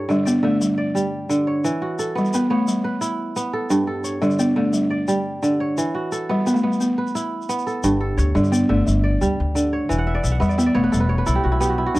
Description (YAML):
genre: west african traditional, West African string and xylophone music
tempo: 116 BPM (dotted quarters)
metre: 12/8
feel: straight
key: unclear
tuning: A4 = 440 Hz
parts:
  - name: kora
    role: arpeggios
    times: 0.0-12.0 s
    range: G2 to F#5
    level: -21 LUFS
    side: right 1 dB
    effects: none
  - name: balafon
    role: melody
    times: 0.1-11.7 s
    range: G3 to B3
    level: -22 LUFS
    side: equal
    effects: none
  - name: tube shaker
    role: percussion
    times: 0.1-12.0 s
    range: none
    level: -34 LUFS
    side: left 4 dB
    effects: none
  - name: upright bass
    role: bass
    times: 7.8-12.0 s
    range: E1 to G2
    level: -21 LUFS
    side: left 1 dB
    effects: none
room: moderate spring reverb, RT60 1.3 s, small room ambience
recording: none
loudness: -18 LUFS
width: side -18 dB against mid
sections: 0.0-12.0 A section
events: kora fill 10.0-12.0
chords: 0.0 G5; 1.6 Em; 3.7 G5; 5.8 E5; 7.8 G5; 9.9 Em